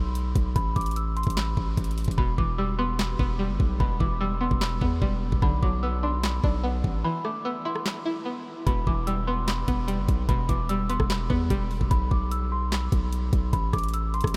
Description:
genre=hip hop, trap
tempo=148 BPM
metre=4/4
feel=half-time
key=E minor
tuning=A4 = 440 Hz
part: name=worn celesta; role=melody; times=0.0-14.4 s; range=B5 to E6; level=-35 LUFS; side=equal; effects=low-pass filter, diffuse ambient delay
part: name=long sustained 808-style bass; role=bass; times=0.0-14.4 s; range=E1 to E2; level=-30 LUFS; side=equal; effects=none
part: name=trap drum kit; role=drums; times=0.2-14.4 s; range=handclaps, hi-hat, kick drum, rim click, snare drum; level=-30 LUFS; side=equal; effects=none
part: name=string-like resonator pluck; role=accompaniment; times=2.2-11.9 s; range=B2 to E4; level=-34 LUFS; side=equal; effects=chorus, phaser, low-pass filter
room=moderate huge ambient reverb, RT60 7.1 s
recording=dreamy mix soaked in reverb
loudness=-26 LUFS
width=mono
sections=0.0-14.4 A section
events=hi-hats muted 2.2-8.7; break 7.0-8.7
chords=0.0 N.C.; 0.6 Asus2; 2.2 Em; 5.4 Bm; 7.0 Asus2; 8.7 Em; 11.9 N.C.; 13.5 Asus2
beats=0.15 | 0.56 0.96 1.37 1.77 | 2.18 2.58 2.99 3.40 | 3.80 4.21 4.61 5.02 | 5.42 5.83 6.23 6.64 | 7.04 7.45 7.86 8.26 | 8.67 9.07 9.48 9.88 | 10.29 10.69 11.10 11.50 | 11.91 12.31 12.72 13.13 | 13.53 13.94 14.34

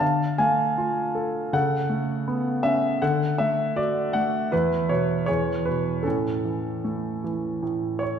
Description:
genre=classical, lyrical solo piano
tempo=79 BPM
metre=4/4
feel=rubato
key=A major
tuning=A4 = 444 Hz
part: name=warm concert grand piano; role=solo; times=0.0-8.2 s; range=E2 to A5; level=-22 LUFS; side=equal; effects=none
room=wet concert hall reverb, RT60 2.2 s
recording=recorded in a church or concert hall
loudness=-22 LUFS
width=side -8 dB against mid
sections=0.0-8.2 A section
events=grand piano fill 7.6-8.2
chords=0.0 Dm; 1.5 Aadd9/C#; 3.0 D; 4.5 E5; 5.3 E; 6.1 A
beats=| 0.02 0.78 1.54 2.28 | 3.02 3.77 4.53 5.29 | 6.05 6.83 7.61

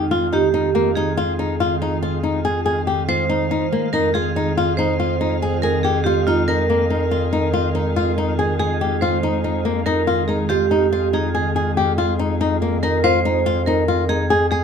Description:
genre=contemporary instrumental, chamber music in an uneven meter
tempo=142 BPM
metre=7/4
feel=straight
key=F minor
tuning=A4 = 439 Hz
part: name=vibraphone with medium hard mallets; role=second line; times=0.0-14.6 s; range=F4 to C5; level=-22 LUFS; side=right 4 dB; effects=none
part: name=soft additive organ-like pad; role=sustained chords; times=0.0-14.6 s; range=Eb3 to F4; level=-26 LUFS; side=right 3 dB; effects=ensemble chorus, built-in reverb
part: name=flamenco guitar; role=arpeggios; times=0.0-14.6 s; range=Bb3 to Ab4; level=-21 LUFS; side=left 4 dB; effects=none
part: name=mellow bass clarinet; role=bass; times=0.0-14.6 s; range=F2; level=-23 LUFS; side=left 1 dB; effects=none
room=light reverb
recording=close, detailed microphones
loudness=-17 LUFS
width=side -7 dB against mid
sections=0.0-14.6 A section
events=none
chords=0.0 Fm7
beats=0.12 0.54 | 0.96 1.39 1.81 2.24 2.66 3.09 3.51 | 3.94 4.36 4.78 5.21 5.63 6.06 6.48 | 6.90 7.33 7.75 8.17 8.60 9.02 9.44 | 9.87 10.29 10.71 11.14 11.56 11.98 12.41 | 12.83 13.25 13.68 14.10 14.52

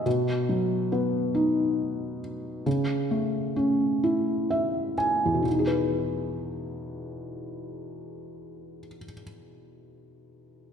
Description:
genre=pop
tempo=41-47 BPM (dotted quarters)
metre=6/8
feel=straight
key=E major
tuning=A4 = 440 Hz
part: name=felt-muted upright piano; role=accompaniment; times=0.0-10.7 s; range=E2 to G#5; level=-25 LUFS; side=equal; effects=none
room=wet scoring stage reverb, RT60 2.0 s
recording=none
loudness=-24 LUFS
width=side -7 dB against mid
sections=0.0-5.5 A section; 5.5-8.4 B section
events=slowing down 0.1-5.5; felt piano fill 4.0-5.5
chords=0.1 B; 2.7 A/C#; 5.5 Emaj7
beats=| 0.06 1.35 | 2.66 4.03 | 5.46 6.93

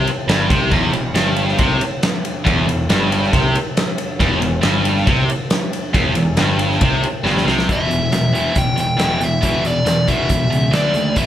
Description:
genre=hard rock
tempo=138 BPM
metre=4/4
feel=straight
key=E minor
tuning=A4 = 439 Hz
part: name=high-gain distorted guitar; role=riff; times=0.0-11.3 s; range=E2 to D4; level=-18 LUFS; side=equal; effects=distortion
part: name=fuzz picked electric bass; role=bass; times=0.0-11.3 s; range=E1 to E2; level=-22 LUFS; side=equal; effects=overdrive
part: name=big rock drum kit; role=drums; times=0.1-11.3 s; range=crash cymbal, hi-hat, kick drum, ride cymbal, snare drum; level=-19 LUFS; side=equal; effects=none
part: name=biting lead guitar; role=melody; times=7.7-11.3 s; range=D5 to G5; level=-20 LUFS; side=left 1 dB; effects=overdrive
room=moderate large studio reverb, RT60 1.1 s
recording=band playing live in one room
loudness=-14 LUFS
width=side -11 dB against mid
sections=0.0-7.7 A section; 7.7-11.3 B section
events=drum fill 7.3-7.7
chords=0.0 Em; 10.7 D5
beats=0.28 | 0.72 1.15 1.59 2.02 | 2.46 2.89 3.33 3.77 | 4.20 4.64 5.07 5.51 | 5.95 6.38 6.82 7.25 | 7.69 8.13 8.56 9.00 | 9.43 9.87 10.30 10.74 | 11.17

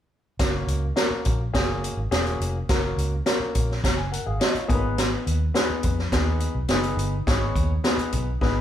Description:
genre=uptempo 1960s-style soul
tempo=105 BPM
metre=4/4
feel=straight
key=F# major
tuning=A4 = 439 Hz
part: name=clear grand piano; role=accompaniment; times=0.4-8.6 s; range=A#3 to A#5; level=-28 LUFS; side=left 3 dB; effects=none
part: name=vintage muted fingered electric bass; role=bass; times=0.4-8.6 s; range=E1 to E#2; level=-26 LUFS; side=equal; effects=none
part: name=swinging big-band drum kit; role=drums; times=0.4-8.6 s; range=hi-hat, kick drum, snare drum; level=-24 LUFS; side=equal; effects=none
room=light reverb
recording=band playing live in one room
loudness=-21 LUFS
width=side -10 dB against mid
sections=0.4-8.6 A section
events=drum fill 8.4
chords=0.4 F#; 4.7 G#m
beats=| 0.39 0.97 1.54 2.11 | 2.68 3.26 3.83 4.40 | 4.97 5.55 6.12 6.69 | 7.27 7.84 8.41

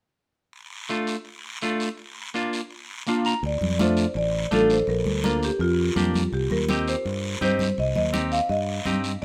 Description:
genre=latin, cumbia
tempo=166 BPM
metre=4/4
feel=straight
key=C dorian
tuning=A4 = 441 Hz
part: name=guiro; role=percussion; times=0.5-9.2 s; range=none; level=-37 LUFS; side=equal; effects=none
part: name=semi-hollow electric guitar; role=accompaniment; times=0.9-9.1 s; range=A3 to Bb5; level=-28 LUFS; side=equal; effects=none
part: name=fingered electric bass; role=bass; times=3.4-9.2 s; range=A1 to G2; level=-30 LUFS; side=equal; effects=none
part: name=congas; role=percussion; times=3.4-9.2 s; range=none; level=-31 LUFS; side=equal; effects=none
part: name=marimba with medium hard mallets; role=melody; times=3.5-9.2 s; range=F4 to F5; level=-28 LUFS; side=equal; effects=none
room=moderate studio reverb, RT60 0.7 s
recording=none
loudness=-24 LUFS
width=mono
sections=0.5-3.4 A section; 3.4-9.2 B section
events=clean electric guitar fill 2.9-3.4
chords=0.5 Dm; 2.0 Bb; 3.4 Dm; 4.9 Bb; 6.3 Cm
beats=| 0.54 0.90 1.26 1.63 | 1.99 2.35 2.71 3.08 | 3.44 3.80 4.16 4.52 | 4.88 5.25 5.61 5.97 | 6.33 6.69 7.06 7.42 | 7.78 8.14 8.50 8.87 | 9.23

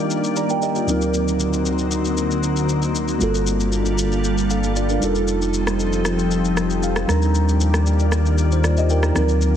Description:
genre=amapiano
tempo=116 BPM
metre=4/4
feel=straight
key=unclear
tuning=A4 = 441 Hz
part: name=mellow tine electric piano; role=accompaniment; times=0.0-9.6 s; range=D2 to Bb5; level=-22 LUFS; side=right 2 dB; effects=phaser
part: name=glassy FM pad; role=sustained chords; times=0.0-9.6 s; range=D3 to D5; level=-23 LUFS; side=left 2 dB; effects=ensemble chorus, built-in reverb
part: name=electronic shaker and rim click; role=drums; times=0.1-9.5 s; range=none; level=-28 LUFS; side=left 2 dB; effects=none
part: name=warm sub bass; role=bass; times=3.2-9.6 s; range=F1 to Eb2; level=-20 LUFS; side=equal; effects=none
room=light reverb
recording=heavily compressed radio sound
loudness=-17 LUFS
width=side -9 dB against mid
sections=0.0-9.6 A section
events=tine electric piano fill 6.6-7.3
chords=0.0 Ebmaj7; 0.9 D7b9b13; 3.2 Gm9; 5.0 F9; 7.1 Ebmaj7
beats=0.10 0.62 | 1.14 1.66 2.17 2.69 | 3.21 3.73 4.24 4.76 | 5.28 5.79 6.31 6.83 | 7.35 7.86 8.38 8.90 | 9.41

